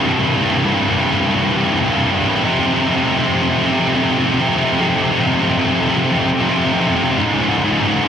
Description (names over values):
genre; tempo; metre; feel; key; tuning
metal; 101 BPM; 4/4; straight; unclear; A4 = 440 Hz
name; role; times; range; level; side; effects
scooped high-gain guitar; solo; 0.0-8.1 s; C2 to C3; -14 LUFS; equal; distortion, cassette tape
room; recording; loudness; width
moderate studio reverb, RT60 0.5 s; home recording on cassette, nothing above 10.5 kHz; -14 LUFS; side -8 dB against mid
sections
0.0-8.1 A section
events
none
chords
0.0 C5; 2.4 F5; 7.2 Db5